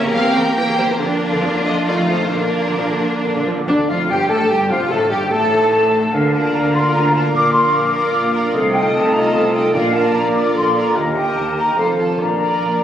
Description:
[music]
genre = classical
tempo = 132-151 BPM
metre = 3/4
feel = straight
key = Bb major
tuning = A4 = 440 Hz
[part]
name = rich symphonic violin section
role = second line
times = 0.0-12.8 s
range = D4 to Bb4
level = -25 LUFS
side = left 1 dB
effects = none
[part]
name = warm symphonic viola section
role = accompaniment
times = 0.0-12.8 s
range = C3 to A4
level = -23 LUFS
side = right 1 dB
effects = none
[part]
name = concert harp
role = arpeggios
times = 0.0-12.8 s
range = Bb2 to D5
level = -26 LUFS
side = left 1 dB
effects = none
[part]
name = bright symphonic double bass section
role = bass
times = 0.0-12.8 s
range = F1 to F2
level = -28 LUFS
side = right 3 dB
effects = none
[part]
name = rich symphonic cello section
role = bass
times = 0.0-12.8 s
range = D2 to F4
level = -24 LUFS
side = right 1 dB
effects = none
[part]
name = warm symphonic violin section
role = melody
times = 0.1-12.8 s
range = D4 to G5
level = -26 LUFS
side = left 1 dB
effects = none
[part]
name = large flute ensemble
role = second line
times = 3.7-12.8 s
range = D5 to D6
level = -19 LUFS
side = left 1 dB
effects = none
[part]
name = mellow clarinet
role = second line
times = 3.7-12.8 s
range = D4 to Bb4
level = -22 LUFS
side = right 2 dB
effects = none
[part]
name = warm oboe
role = second line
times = 3.7-12.8 s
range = Bb4 to A5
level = -24 LUFS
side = equal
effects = none
[part]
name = dark French horn section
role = sustained chords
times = 3.7-12.8 s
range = D3 to Bb4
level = -23 LUFS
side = left 1 dB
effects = none
[part]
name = timpani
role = percussion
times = 7.3-10.3 s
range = Bb2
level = -31 LUFS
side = right 1 dB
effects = none
[sound]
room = wet scoring stage reverb, RT60 1.9 s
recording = recorded on a phone in the room, studio reverb, compression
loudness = -14 LUFS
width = side -10 dB against mid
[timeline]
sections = 0.0-3.7 A section; 3.7-12.8 B section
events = none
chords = 0.0 Edim7; 1.0 Bb/F; 1.9 F7; 2.3 Bb; 4.9 F7; 6.1 Bb/D; 7.3 Bb; 8.5 F7/C; 9.7 Bb; 11.0 Eb; 11.8 F; 12.2 Bb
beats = 0.14 0.57 | 1.00 1.44 1.88 | 2.33 2.79 3.24 | 3.68 4.09 4.50 | 4.90 5.31 5.71 | 6.12 6.53 6.92 | 7.32 7.72 8.12 | 8.53 8.93 9.33 | 9.73 10.14 10.55 | 10.95 11.36 11.77 | 12.19 12.61

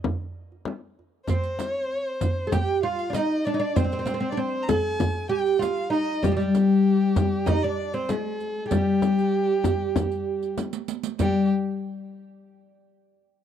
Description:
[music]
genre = Arabic maqam ensemble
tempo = 97 BPM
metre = 4/4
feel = straight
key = G maqam bayati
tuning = A4 = 440 Hz
[part]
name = darbuka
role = percussion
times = 0.0-11.5 s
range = none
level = -29 LUFS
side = right 2 dB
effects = none
[part]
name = frame drum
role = percussion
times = 0.0-11.5 s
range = none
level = -29 LUFS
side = left 4 dB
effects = none
[part]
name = oud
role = melody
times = 1.3-11.5 s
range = F3 to Ab4+50c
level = -23 LUFS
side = equal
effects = none
[part]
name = warm violin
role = second line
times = 1.3-11.5 s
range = G4 to Bb5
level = -31 LUFS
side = left 1 dB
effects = none
[part]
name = riq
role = percussion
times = 1.3-11.5 s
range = none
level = -35 LUFS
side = right 12 dB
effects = none
[sound]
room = small room reverb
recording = dry, close 1970s-style studio recording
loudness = -22 LUFS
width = side -9 dB against mid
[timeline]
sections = 0.0-11.2 A section; 11.2-13.4 B section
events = drum fill 10.6-11.2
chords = none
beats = 0.04 0.66 | 1.28 1.90 2.52 3.14 | 3.76 4.38 5.00 5.62 | 6.24 6.86 7.48 8.10 | 8.72 9.34 9.96 10.57 | 11.19

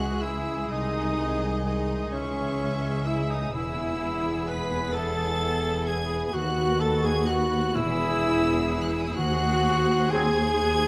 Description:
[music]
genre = classical, slow romantic movement for symphony orchestra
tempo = 42 BPM (dotted quarters)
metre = 6/8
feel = rubato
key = unclear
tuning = A4 = 440 Hz
[part]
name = rich studio violin section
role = melody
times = 0.0-10.9 s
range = C#6 to B6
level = -38 LUFS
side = equal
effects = none
[part]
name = mellow clarinet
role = second line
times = 0.0-10.9 s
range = C#4 to B4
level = -38 LUFS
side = equal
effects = none
[part]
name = mellow hollow silver concert flute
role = second line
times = 0.0-10.9 s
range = C#5 to B5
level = -37 LUFS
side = equal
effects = none
[part]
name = rich studio violin section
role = second line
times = 0.0-10.9 s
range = F#4 to E5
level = -40 LUFS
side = equal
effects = none
[part]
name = warm cor anglais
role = second line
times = 0.0-10.9 s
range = C#4 to B4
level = -36 LUFS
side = equal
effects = none
[part]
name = rich studio viola section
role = accompaniment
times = 0.0-10.9 s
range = C#4 to B4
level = -35 LUFS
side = equal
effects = none
[part]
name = dark French horn section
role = sustained chords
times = 0.0-10.9 s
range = C#4 to B4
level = -36 LUFS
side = equal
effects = none
[part]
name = warm trombone section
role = sustained chords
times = 0.0-10.3 s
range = D#3 to B#3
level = -40 LUFS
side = equal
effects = none
[part]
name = concert harp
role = arpeggios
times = 0.0-10.9 s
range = B#2 to C#5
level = -39 LUFS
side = equal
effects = none
[part]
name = dark trumpet section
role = stabs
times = 0.0-10.3 s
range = F#4 to G#4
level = -38 LUFS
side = equal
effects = none
[part]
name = rich studio cello section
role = bass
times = 0.0-10.9 s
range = B#1 to E2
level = -34 LUFS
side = equal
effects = none
[part]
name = warm studio double bass section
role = bass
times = 0.0-10.9 s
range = E1 to D#2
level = -34 LUFS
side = equal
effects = none
[sound]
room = moderate recital hall reverb, RT60 1.9 s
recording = vinyl crackle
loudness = -26 LUFS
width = mono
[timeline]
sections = 0.0-10.9 A section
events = none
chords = 0.0 C#m; 0.7 G#/B#; 2.1 C#m; 3.5 E; 6.3 B/D#; 7.8 E; 9.2 G#7/D#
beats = | 0.70 2.12 | 3.54 4.95 | 6.34 7.75 | 9.18 10.59

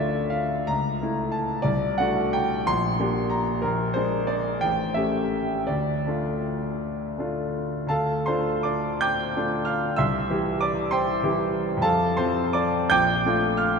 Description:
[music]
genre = classical, romantic character piece for solo piano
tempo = 52-67 BPM (dotted quarters)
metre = 6/8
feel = rubato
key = D minor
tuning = A4 = 439 Hz
[part]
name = bright grand piano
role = solo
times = 0.0-13.8 s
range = A1 to G6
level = -22 LUFS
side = equal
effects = none
[sound]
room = wet cathedral reverb, RT60 5.2 s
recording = in a vast, echoing space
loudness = -22 LUFS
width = side -5 dB against mid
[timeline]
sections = 0.0-7.9 A section; 7.9-13.8 A section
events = none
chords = 0.0 Dm; 0.7 A/C#; 1.7 D7/C; 2.7 Gm/Bb; 3.6 Bb7; 4.6 A7; 5.7 Dm; 10.0 C; 11.8 F; 12.9 Bbmaj7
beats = 0.68 | 1.65 2.69 | 3.63 4.62 | 5.69 6.81 | 7.89 9.01 | 9.98 10.92 | 11.83 12.91

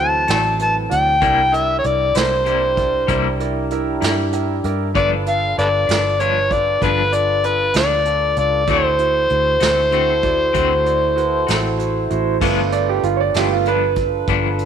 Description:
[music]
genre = slow blues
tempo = 64 BPM (dotted quarters)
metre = 12/8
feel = straight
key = G mixolydian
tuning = A4 = 437 Hz
[part]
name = overdriven harmonica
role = melody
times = 0.0-11.8 s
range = A4 to A5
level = -17 LUFS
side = left 1 dB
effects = none
[part]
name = bright concert grand piano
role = accompaniment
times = 0.0-14.7 s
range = A3 to G5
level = -23 LUFS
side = right 11 dB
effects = none
[part]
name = mellow tonewheel organ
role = sustained chords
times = 0.0-14.7 s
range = E3 to C5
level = -26 LUFS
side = equal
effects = slow rotary speaker, overdrive
[part]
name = vintage muted fingered electric bass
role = bass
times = 0.0-14.7 s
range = G1 to G2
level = -23 LUFS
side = left 1 dB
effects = none
[part]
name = semi-hollow electric guitar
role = accompaniment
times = 0.3-14.5 s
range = G2 to F#4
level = -25 LUFS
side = left 14 dB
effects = tremolo
[part]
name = vintage brush drum kit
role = drums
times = 0.3-14.7 s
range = crash cymbal, hi-hat, kick drum, snare drum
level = -24 LUFS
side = right 3 dB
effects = none
[sound]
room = moderate echo chamber reverb, RT60 1.8 s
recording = 1960s-style stereo with parts hard left and right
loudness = -15 LUFS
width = side -8 dB against mid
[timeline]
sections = 0.0-12.4 A section; 12.4-14.7 B section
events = grand piano fill 4.0-5.0; grand piano solo 12.4-14.7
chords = 0.0 D7; 1.2 C7; 5.0 G7; 8.7 D7; 12.4 G7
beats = 0.29 | 1.22 2.15 3.09 4.02 | 4.95 5.89 6.82 7.75 | 8.69 9.62 10.55 11.49 | 12.42 13.35 14.29

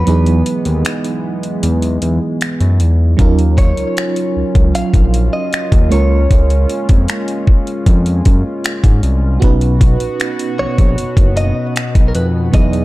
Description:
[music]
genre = contemporary R&B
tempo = 77 BPM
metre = 4/4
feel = straight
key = unclear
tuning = A4 = 438 Hz
[part]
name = direct-recorded clean electric guitar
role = melody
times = 0.0-12.8 s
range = A#4 to F5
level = -22 LUFS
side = equal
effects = spring reverb, digital delay
[part]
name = FM electric piano with tremolo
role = accompaniment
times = 0.0-12.8 s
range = Gb3 to B4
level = -21 LUFS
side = right 5 dB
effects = none
[part]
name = chorused pulse-width pad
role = sustained chords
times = 0.0-12.8 s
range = B2 to F#4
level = -22 LUFS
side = left 1 dB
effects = sidechain pumping
[part]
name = smooth synth bass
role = bass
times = 0.0-12.8 s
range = F#1 to Ab2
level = -14 LUFS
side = equal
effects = none
[part]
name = smooth R&B drum kit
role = drums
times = 0.1-12.8 s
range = finger snaps, hi-hat, kick drum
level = -12 LUFS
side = equal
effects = none
[sound]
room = digital ambience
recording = dark, warm production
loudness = -11 LUFS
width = side -18 dB against mid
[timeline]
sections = 0.0-12.8 A section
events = break 0.1-3.2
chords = 0.1 Emaj7; 3.2 Ebm9; 5.9 Bbm7/Db; 9.4 Bmaj7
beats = | 0.07 0.85 1.63 2.41 | 3.19 3.97 4.75 5.53 | 6.30 7.08 7.86 8.64 | 9.42 10.20 10.98 11.76 | 12.54

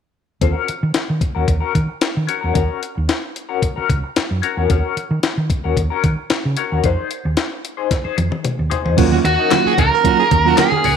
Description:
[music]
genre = funk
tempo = 112 BPM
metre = 4/4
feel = straight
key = Eb dorian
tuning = A4 = 440 Hz
[part]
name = semi-hollow electric guitar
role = accompaniment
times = 0.4-11.0 s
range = Db4 to C5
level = -22 LUFS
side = left 10 dB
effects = wah, tremolo
[part]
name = hollow-body short-scale fingered electric bass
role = bass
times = 0.4-11.0 s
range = Db2 to Eb3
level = -19 LUFS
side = right 1 dB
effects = none
[part]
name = breakbeat sampler-style drum kit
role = drums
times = 0.4-11.0 s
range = crash cymbal, handclaps, hi-hat, kick drum, snare drum, toms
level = -20 LUFS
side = left 2 dB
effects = none
[part]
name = percussive tonewheel organ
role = sustained chords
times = 9.0-11.0 s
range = Eb3 to Gb4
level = -28 LUFS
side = right 2 dB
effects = overdrive, chorus vibrato, slow rotary speaker
[part]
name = mellow tine electric piano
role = stabs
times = 9.0-10.7 s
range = Gb3 to F4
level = -19 LUFS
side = right 11 dB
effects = medium stereo tremolo
[part]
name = congas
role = percussion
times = 9.0-11.0 s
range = none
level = -24 LUFS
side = right 9 dB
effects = none
[part]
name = growling tenor saxophone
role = second line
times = 9.1-10.8 s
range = Eb4 to Bb4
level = -23 LUFS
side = right 11 dB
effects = none
[part]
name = octave-fuzz lead guitar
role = melody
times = 9.3-11.0 s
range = Gb4 to Bb4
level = -15 LUFS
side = right 2 dB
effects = distortion
[sound]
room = light reverb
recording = 1960s-style stereo with parts hard left and right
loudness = -15 LUFS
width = side -7 dB against mid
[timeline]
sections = 0.4-9.0 A section; 9.0-11.0 B section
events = drum fill 7.9-9.0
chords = 0.4 Ebm7; 6.8 Fm7 (rootless); 9.0 Ebm7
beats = | 0.42 0.95 1.49 2.02 | 2.56 3.09 3.63 4.16 | 4.70 5.23 5.77 6.30 | 6.84 7.38 7.91 8.45 | 8.98 9.52 10.05 10.59

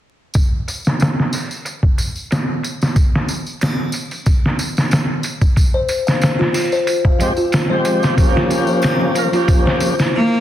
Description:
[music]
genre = trip hop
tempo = 92 BPM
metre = 4/4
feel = swing 54% on 16ths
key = F minor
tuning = A4 = 439 Hz
[part]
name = tambourine and triangle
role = percussion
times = 0.3-10.1 s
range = none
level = -29 LUFS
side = equal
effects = none
[part]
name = trip hop sampler-style drum kit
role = drums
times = 0.4-10.1 s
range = hi-hat, kick drum, snare drum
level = -16 LUFS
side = equal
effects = low-pass filter on kick, low-pass filter on hats, low-pass filter on snare, low-pass filter on room
[part]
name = music box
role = arpeggios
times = 5.7-10.1 s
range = E4 to F5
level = -19 LUFS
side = left 2 dB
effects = tape echo
[part]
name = tonewheel organ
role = accompaniment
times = 7.2-10.0 s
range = F3 to Bb4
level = -18 LUFS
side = equal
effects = overdrive, slow rotary speaker, harmonic tremolo, tape echo
[part]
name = bright cello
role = melody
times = 10.2-10.4 s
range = Bb3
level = -14 LUFS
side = equal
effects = none
[sound]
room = light reverb, studio reverb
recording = dense, heavily limited modern master, vinyl crackle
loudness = -14 LUFS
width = side -12 dB against mid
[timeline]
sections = 0.4-10.4 A section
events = none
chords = 0.4 N.C.; 5.6 Fmadd9; 8.2 Gm7b5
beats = | 0.35 1.00 1.66 2.31 | 2.96 3.61 4.26 4.92 | 5.57 6.22 6.87 7.53 | 8.18 8.83 9.48 10.13

